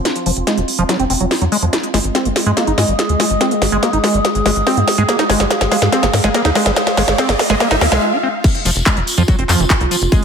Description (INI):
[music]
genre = psychedelic trance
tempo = 143 BPM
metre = 4/4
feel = straight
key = unclear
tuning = A4 = 443 Hz
[part]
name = warbly tape-like pad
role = texture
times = 0.0-10.2 s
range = Ab3 to Eb6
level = -21 LUFS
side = right 1 dB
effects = chorus, built-in reverb, sidechain pumping
[part]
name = techno drum kit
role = drums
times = 0.1-10.2 s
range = crash cymbal, handclaps, hi-hat, snare drum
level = -17 LUFS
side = equal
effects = none
[part]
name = liquid acid bass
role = riff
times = 0.3-10.2 s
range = Eb3 to Eb4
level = -19 LUFS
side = moving between left 4 dB and right 3 dB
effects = chorus, auto-pan, sidechain pumping, tape echo
[part]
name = tight sequencer bass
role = bass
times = 0.3-10.1 s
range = F1 to Ab2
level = -18 LUFS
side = equal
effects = none
[part]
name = riser and swell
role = sound effects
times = 4.3-8.4 s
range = none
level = -24 LUFS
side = equal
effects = none
[part]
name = electronic kick drum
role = drums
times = 8.4-10.2 s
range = none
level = -14 LUFS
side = equal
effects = distortion
[part]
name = tambourine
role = percussion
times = 8.4-10.2 s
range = none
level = -23 LUFS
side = left 3 dB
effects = none
[sound]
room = moderate digital room reverb, RT60 1.0 s, digital ambience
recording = none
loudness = -12 LUFS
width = side -6 dB against mid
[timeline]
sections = 0.0-8.4 A section; 8.4-10.2 B section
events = build-up 0.0-8.4; drum fill 0.0-8.0; filter sweep on acid bass 0.0-8.4; riser 4.3-8.0; swell 7.6-8.4; break 8.0-8.4; drop 8.4-10.2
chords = 0.0 F5; 1.7 Ab5; 8.4 F5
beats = | 0.05 0.47 0.89 1.31 | 1.73 2.15 2.57 2.99 | 3.41 3.83 4.25 4.67 | 5.09 5.51 5.92 6.34 | 6.76 7.18 7.60 8.02 | 8.44 8.86 9.28 9.70 | 10.12